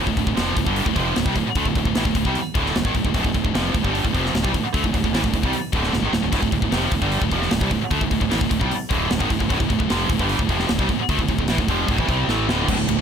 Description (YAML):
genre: heavy metal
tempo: 151 BPM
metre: 4/4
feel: straight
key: D minor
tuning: A4 = 435 Hz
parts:
  - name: heavy high-gain guitar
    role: riff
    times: 0.0-13.0 s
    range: D2 to C4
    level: -24 LUFS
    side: left 17 dB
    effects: distortion
  - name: heavy high-gain guitar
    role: riff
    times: 0.0-13.0 s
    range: D2 to C4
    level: -24 LUFS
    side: right 13 dB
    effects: distortion
  - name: fuzz fingered electric bass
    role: bass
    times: 0.0-13.0 s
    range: D1 to D2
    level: -26 LUFS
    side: left 1 dB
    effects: overdrive
  - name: tight metal drum kit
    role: drums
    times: 0.1-13.0 s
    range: crash cymbal, hi-hat, kick drum, ride cymbal, snare drum, splash cymbal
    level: -24 LUFS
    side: left 1 dB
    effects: none
  - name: overdriven semi-hollow guitar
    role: riff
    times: 12.7-13.0 s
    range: D2 to A2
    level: -24 LUFS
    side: right 1 dB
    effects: none
room: little or no reverb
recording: none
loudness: -18 LUFS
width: side -7 dB against mid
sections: 0.0-12.7 A section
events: drum fill 5.9-6.3, 12.3-12.7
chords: 0.0 Dm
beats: 0.37 0.77 1.16 | 1.56 1.96 2.35 2.75 | 3.15 3.55 3.94 4.34 | 4.74 5.14 5.53 5.93 | 6.33 6.72 7.12 7.52 | 7.92 8.31 8.71 9.11 | 9.51 9.90 10.30 10.70 | 11.10 11.49 11.89 12.29 | 12.69